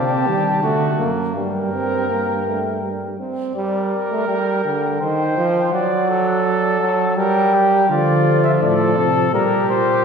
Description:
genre	classical, imitative canzona for brass ensemble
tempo	83 BPM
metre	3/4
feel	straight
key	G minor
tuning	A4 = 440 Hz
part	dark cornet	melody	0.0-10.0 s	A4 to A5	-22 LUFS	left 5 dB	none
part	mellow trumpet	second line	0.0-10.0 s	F4 to D5	-23 LUFS	right 4 dB	none
part	mellow trombone	accompaniment	0.0-9.8 s	D3 to C4	-20 LUFS	right 2 dB	none
part	warm tuba	bass	0.0-3.2, 7.9-10.0 s	F#2 to Eb3	-22 LUFS	equal	none
room	wet concert hall reverb, RT60 2.2 s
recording	recorded in a church or concert hall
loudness	-16 LUFS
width	side -6 dB against mid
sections	0.0-3.6 A section; 3.6-10.0 B section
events	none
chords	0.0 Cm; 0.6 D; 1.4 Gm; 5.0 Eb69; 5.7 D/F#; 7.2 Gm; 7.9 Dm; 9.3 Gmadd11/Bb

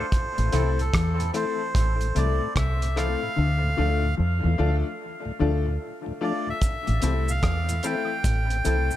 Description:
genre	dub reggae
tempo	74 BPM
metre	4/4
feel	swing 64% on 16ths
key	A minor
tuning	A4 = 440 Hz
part	melodica	melody	0.0-9.0 s	A4 to G5	-30 LUFS	right 1 dB	dub echo
part	mellow tonewheel organ	accompaniment	0.0-9.0 s	D2 to D4	-35 LUFS	left 2 dB	slow rotary speaker, dub echo
part	twangy electric guitar	accompaniment	0.0-0.7 s	C4 to A4	-40 LUFS	right 5 dB	none
part	bright upright piano	stabs	0.0-9.0 s	A3 to A4	-31 LUFS	left 7 dB	dub echo
part	cloth-damped thuddy drum kit	drums	0.1-8.9 s	hi-hat, kick drum, rim click	-26 LUFS	right 1 dB	none
part	mellow electric guitar	riff	0.4-8.8 s	A2 to F3	-33 LUFS	left 6 dB	dub echo
part	deep dub fingered electric bass	bass	0.4-8.9 s	A1 to F2	-24 LUFS	equal	none
part	cabasa	percussion	6.6-9.0 s	none	-38 LUFS	right 2 dB	none
room	light reverb, small room ambience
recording	echo-heavy mix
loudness	-22 LUFS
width	side -13 dB against mid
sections	0.0-9.0 A section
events	break 0.0-6.6; part muted 3.4-6.6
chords	0.1 Am; 3.4 Dm; 6.6 Am

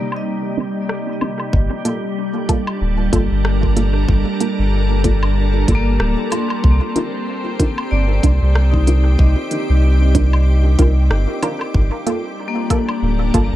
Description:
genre	ambient dub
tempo	94 BPM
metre	4/4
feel	swing 58% on 16ths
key	G minor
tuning	A4 = 441 Hz
part	soft additive organ-like pad	sustained chords	0.0-13.6 s	C3 to D6	-23 LUFS	equal	ensemble chorus, built-in reverb
part	vibraphone with hard mallets	arpeggios	0.0-13.6 s	Bb3 to C6	-26 LUFS	left 4 dB	dub echo
part	filtered dub chord stab	stabs	0.0-13.5 s	Bb3 to Bb4	-24 LUFS	right 2 dB	phaser, dub echo
part	organic electronic drum kit	drums	0.1-13.5 s	hi-hat, rim click, woodblock	-27 LUFS	equal	low-pass filter on perc, low-pass filter on snare, low-pass filter on hats, dub echo
part	soft dub sub bass	bass	1.5-13.6 s	D1 to C2	-14 LUFS	equal	none
part	electronic kick drum	drums	1.5-13.5 s	none	-17 LUFS	equal	none
room	little or no reverb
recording	dark, warm production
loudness	-14 LUFS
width	side -14 dB against mid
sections	0.0-1.5 A section; 1.5-13.6 B section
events	filter sweep on vibraphone 0.0-1.5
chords	0.0 Cm11; 1.5 Gm9; 6.6 Cm11; 11.7 Gm9

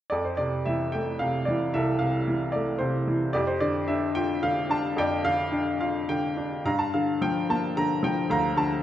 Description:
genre	classical, lyrical solo piano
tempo	111 BPM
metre	3/4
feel	rubato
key	unclear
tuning	A4 = 442 Hz
part	bright upright piano	solo	0.1-8.8 s	C2 to Bb5	-24 LUFS	equal	none
room	moderate recital hall reverb, RT60 1.6 s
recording	none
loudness	-24 LUFS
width	side -11 dB against mid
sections	0.1-8.8 A section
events	none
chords	0.1 Fmaj7; 3.3 Fmaj13; 6.7 Gm7

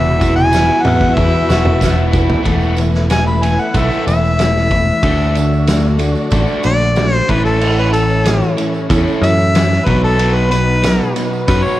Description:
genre	folk rock and heartland rock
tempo	93 BPM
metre	4/4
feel	straight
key	unclear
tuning	A4 = 440 Hz
part	warm harmonica	melody	0.0-11.8 s	A4 to B5	-17 LUFS	left 1 dB	cassette tape
part	picked steel-string acoustic guitar	accompaniment	0.0-11.8 s	E2 to F#4	-24 LUFS	left 5 dB	none
part	dark studio string section	sustained chords	0.0-11.8 s	B3 to E5	-23 LUFS	equal	cassette tape
part	crunchy overdriven guitar	riff	0.0-11.8 s	E2 to F#4	-19 LUFS	right 1 dB	cassette tape
part	picked electric bass	bass	0.0-11.6 s	E1 to F#2	-15 LUFS	equal	none
part	loose indie drum kit	drums	0.2-11.6 s	crash cymbal, kick drum, ride cymbal, snare drum, toms	-19 LUFS	equal	none
part	tambourine	percussion	0.2-11.7 s	none	-35 LUFS	right 10 dB	none
room	light reverb, studio ambience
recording	home recording on cassette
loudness	-11 LUFS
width	side -14 dB against mid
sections	0.0-2.5 A section; 2.5-11.8 B section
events	drum fill 0.0-2.5; harmonica solo 2.5-11.8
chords	0.0 Esus2; 2.5 Esus4; 5.0 D; 7.3 A; 9.9 B

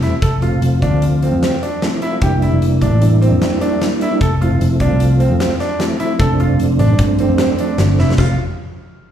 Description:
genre	progressive instrumental, band music in an uneven meter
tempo	151 BPM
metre	5/4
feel	straight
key	F major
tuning	A4 = 440 Hz
part	mellow tonewheel organ	accompaniment	0.0-8.4 s	F3 to F4	-18 LUFS	right 2 dB	chorus vibrato, slapback echo
part	bright baby grand piano	arpeggios	0.0-8.4 s	C4 to A4	-22 LUFS	right 1 dB	slapback echo
part	vintage muted picked electric bass	bass	0.0-8.4 s	E1 to G2	-14 LUFS	equal	none
part	big rock drum kit	drums	0.0-8.3 s	hi-hat, kick drum, snare drum, splash cymbal	-22 LUFS	equal	none
room	light reverb, studio reverb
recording	live gig heard through the venue's PA, club reverb, faint mains hum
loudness	-12 LUFS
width	side -10 dB against mid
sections	0.2-8.2 A section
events	drum fill 8.0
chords	0.2 F; 2.2 C7/F (rootless); 4.2 Dm7/F; 6.2 F69; 8.2 F

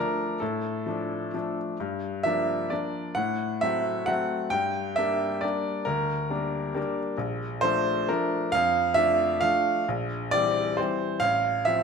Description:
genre	classical, piano waltz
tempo	133 BPM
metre	3/4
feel	uneven beats, rubato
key	unclear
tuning	A4 = 440 Hz
part	clear upright piano	solo	0.0-11.8 s	A1 to G5	-24 LUFS	equal	none
room	wet recital hall reverb, RT60 1.4 s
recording	none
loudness	-24 LUFS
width	side -5 dB against mid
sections	0.0-11.8 A section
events	none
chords	0.0 Dm; 1.8 Gm7; 3.2 F#dim/A; 4.5 Gm; 7.2 Bbmaj7; 9.9 C7/Bb; 11.2 F/A

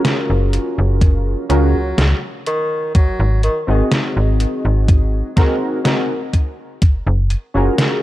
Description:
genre	vaporwave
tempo	62 BPM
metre	4/4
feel	straight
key	unclear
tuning	A4 = 441 Hz
part	warbly lo-fi synth keys	accompaniment	0.0-8.0 s	C4 to Eb5	-20 LUFS	equal	analog chorus, analog delay
part	detuned 8-bit digital drum machine	drums	0.0-8.0 s	hi-hat, snare drum	-20 LUFS	equal	overdrive
part	slap-like FM bass	bass	0.3-7.7 s	Gb1 to Db2	-16 LUFS	equal	none
part	electronic kick drum	drums	1.0-7.0 s	none	-12 LUFS	equal	none
part	warm tenor saxophone	melody	1.5-3.8 s	Eb3 to Gb3	-24 LUFS	equal	tape echo
room	digital ambience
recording	dark, warm production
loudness	-14 LUFS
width	side -15 dB against mid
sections	0.0-8.0 A section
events	none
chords	0.0 Gbmaj9; 2.5 Ab7; 6.8 Gbmaj9

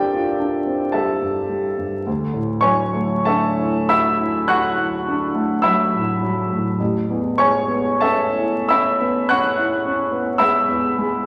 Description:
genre	classical, impressionist solo piano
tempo	43-55 BPM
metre	4/4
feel	rubato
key	A major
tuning	A4 = 440 Hz
part	warm grand piano	solo	0.0-11.3 s	A1 to F#6	-19 LUFS	equal	none
room	wet recital hall reverb, RT60 1.4 s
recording	vinyl crackle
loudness	-19 LUFS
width	mono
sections	0.0-11.3 A section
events	none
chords	0.0 C9sus4; 2.1 Dadd9; 6.8 Amaj9

